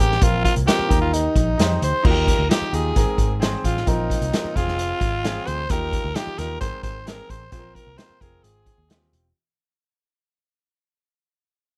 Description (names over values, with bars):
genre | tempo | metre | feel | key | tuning
uptempo 1960s-style soul | 131 BPM | 4/4 | straight | Eb major | A4 = 442 Hz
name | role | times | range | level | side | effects
growling tenor saxophone | melody | 0.0-9.1 s | Eb4 to C5 | -27 LUFS | equal | none
bright upright piano | accompaniment | 0.0-9.3 s | Ab2 to C5 | -30 LUFS | equal | none
vintage muted picked electric bass | bass | 0.0-9.3 s | Fb1 to F2 | -27 LUFS | equal | none
vintage drum kit | drums | 0.0-9.2 s | crash cymbal, hi-hat, kick drum, snare drum | -24 LUFS | equal | none
room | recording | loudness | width
little or no reverb | none | -21 LUFS | mono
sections
0.0-2.0 A section; 2.0-9.4 B section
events
fade-out 2.0-9.4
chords
0.2 Bbsus2; 0.9 Eb; 2.0 Ebadd9; 3.0 Abadd9; 3.9 Bbsus2; 4.6 Fm; 5.7 Ebadd9; 6.6 Abadd9; 7.5 Bbsus2; 8.2 Fm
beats
| 0.22 0.68 1.13 1.59 | 2.04 2.50 2.96 3.41 | 3.87 4.33 4.78 5.24 | 5.70 6.15 6.61 7.07 | 7.52 7.98 8.44 8.90